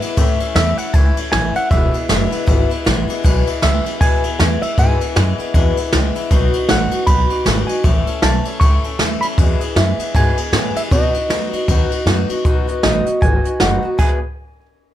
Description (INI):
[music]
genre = rockabilly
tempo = 156 BPM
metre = 4/4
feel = swing 59% on 8ths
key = E major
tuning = A4 = 440 Hz
[part]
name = picked acoustic archtop guitar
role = accompaniment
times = 0.0-14.2 s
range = E2 to A4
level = -22 LUFS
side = left 4 dB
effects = none
[part]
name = upright bass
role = bass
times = 0.0-14.2 s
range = E1 to B2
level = -18 LUFS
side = equal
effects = none
[part]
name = jazz brush drum kit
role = drums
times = 0.0-14.1 s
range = crash cymbal, hi-hat, kick drum, ride cymbal, snare drum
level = -16 LUFS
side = equal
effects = none
[part]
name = clean electric guitar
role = melody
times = 0.6-14.2 s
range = D#5 to C#6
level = -22 LUFS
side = right 1 dB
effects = tape echo
[sound]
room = light reverb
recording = none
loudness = -14 LUFS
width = side -12 dB against mid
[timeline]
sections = 0.0-12.4 A section; 12.4-14.0 B section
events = none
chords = 0.2 A; 1.7 E; 6.3 B; 7.8 A; 9.4 E; 10.9 B; 14.0 E